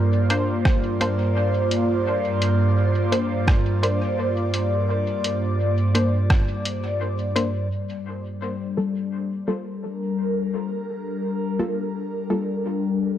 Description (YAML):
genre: ambient dub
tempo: 85 BPM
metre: 4/4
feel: swing 60% on 16ths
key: G minor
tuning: A4 = 440 Hz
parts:
  - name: airy breathy pad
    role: sustained chords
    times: 0.0-13.2 s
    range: G2 to D5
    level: -22 LUFS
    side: equal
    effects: chorus, phaser, vintage 12-bit sampler grit
  - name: filtered dub chord stab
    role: stabs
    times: 0.3-12.5 s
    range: G3 to C5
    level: -28 LUFS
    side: left 1 dB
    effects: chorus, dub echo
  - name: lo-fi sampler-style drum kit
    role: drums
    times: 0.3-7.5 s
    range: hi-hat, rim click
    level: -28 LUFS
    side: equal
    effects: dub echo
  - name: electronic kick drum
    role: drums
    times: 0.7-6.5 s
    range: none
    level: -19 LUFS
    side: right 1 dB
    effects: overdrive
room: digital ambience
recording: echo-heavy mix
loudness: -21 LUFS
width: side -11 dB against mid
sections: 0.0-7.7 A section; 7.7-13.2 B section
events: filter sweep on analog synth pad 7.7-13.2; filter sweep on synth stab 7.7-13.2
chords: 0.0 Bbadd9/G; 7.7 Gm9